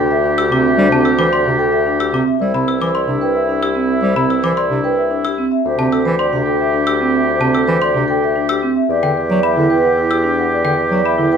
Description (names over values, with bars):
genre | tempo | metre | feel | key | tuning
classical, minimalist pattern music | 111 BPM | 3/4 | straight | unclear | A4 = 440 Hz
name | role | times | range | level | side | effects
marimba with medium mallets | melody | 0.0-11.4 s | G4 to G5 | -22 LUFS | left 7 dB | none
warm oboe | second line | 0.0-11.4 s | E4 to G4 | -21 LUFS | right 2 dB | none
vibraphone with medium mallets | arpeggios | 0.0-11.4 s | C4 to D5 | -18 LUFS | right 3 dB | none
warm bassoon | bass | 0.0-11.4 s | C2 to E2 | -20 LUFS | right 1 dB | none
trough xylophone with rubber mallets | arpeggios | 0.4-11.2 s | G5 to E6 | -23 LUFS | left 5 dB | none
clear bass clarinet | accompaniment | 0.5-11.3 s | C3 to G3 | -21 LUFS | equal | none
room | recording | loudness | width
moderate large studio reverb, RT60 0.8 s | none | -13 LUFS | side -7 dB against mid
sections
0.0-11.4 A section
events
none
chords
0.0 D7sus4; 2.4 Cmaj7; 5.6 D7sus4; 8.9 Em7